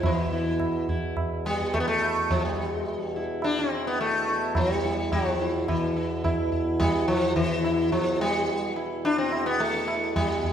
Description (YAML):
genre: indian classical, Hindustani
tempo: 107 BPM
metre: 5/4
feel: straight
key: E raga bhairavi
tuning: A4 = 440 Hz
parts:
  - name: sitar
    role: melody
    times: 0.0-10.5 s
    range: E3 to E4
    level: -25 LUFS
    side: left 1 dB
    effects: none
  - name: hand-pumped harmonium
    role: drone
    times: 0.0-10.5 s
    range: E2 to B2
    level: -32 LUFS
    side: right 1 dB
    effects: none
  - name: tabla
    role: percussion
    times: 0.0-10.5 s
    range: none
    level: -30 LUFS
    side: right 1 dB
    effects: none
room: wet recital hall reverb, RT60 1.6 s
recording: recorded in a church or concert hall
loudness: -23 LUFS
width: side -8 dB against mid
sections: 0.0-5.7 A section; 5.7-10.5 B section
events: none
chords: none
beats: | 0.04 0.60 1.17 1.74 2.30 | 2.87 3.43 3.99 4.56 5.12 | 5.68 6.24 6.80 7.36 7.92 | 8.48 9.04 9.60 10.16